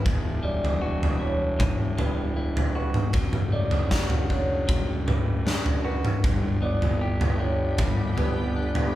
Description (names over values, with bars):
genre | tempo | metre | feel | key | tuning
post-rock | 78 BPM | 4/4 | straight | G lydian | A4 = 440 Hz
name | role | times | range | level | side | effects
clean electric guitar | arpeggios | 0.0-9.0 s | E2 to G4 | -33 LUFS | left 3 dB | spring reverb
felt-muted upright piano | arpeggios | 0.0-8.9 s | B4 to D5 | -33 LUFS | right 1 dB | none
fuzz fingered electric bass | bass | 0.1-9.0 s | E1 to G1 | -30 LUFS | equal | overdrive
big rock drum kit | drums | 0.1-8.9 s | kick drum, snare drum, toms | -24 LUFS | equal | none
shimmering ambient pad | sustained chords | 7.3-9.0 s | D3 to G4 | -34 LUFS | equal | chorus, built-in reverb
room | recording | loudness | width
moderate large studio reverb, RT60 0.9 s | band playing live in one room | -22 LUFS | side -14 dB against mid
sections
0.0-9.0 A section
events
none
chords
0.1 Emadd9; 3.1 D/F#; 6.2 G